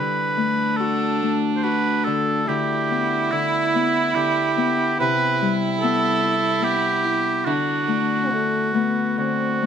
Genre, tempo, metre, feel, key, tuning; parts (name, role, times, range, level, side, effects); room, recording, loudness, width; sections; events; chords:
celtic folk, Celtic slow air; 68-74 BPM; 3/4; rubato; D mixolydian; A4 = 440 Hz
clear oboe; melody; 0.0-9.7 s; E4 to C5; -22 LUFS; right 2 dB; slapback echo
dark fiddle; second line; 0.0-9.7 s; A3 to E4; -24 LUFS; right 6 dB
Celtic harp; accompaniment; 0.0-9.7 s; C3 to F#4; -24 LUFS; left 8 dB
light reverb; close, detailed microphones; -18 LUFS; side -8 dB against mid
0.0-9.7 A section
0.0 D; 2.5 G6/D; 5.0 Cmaj7; 7.5 D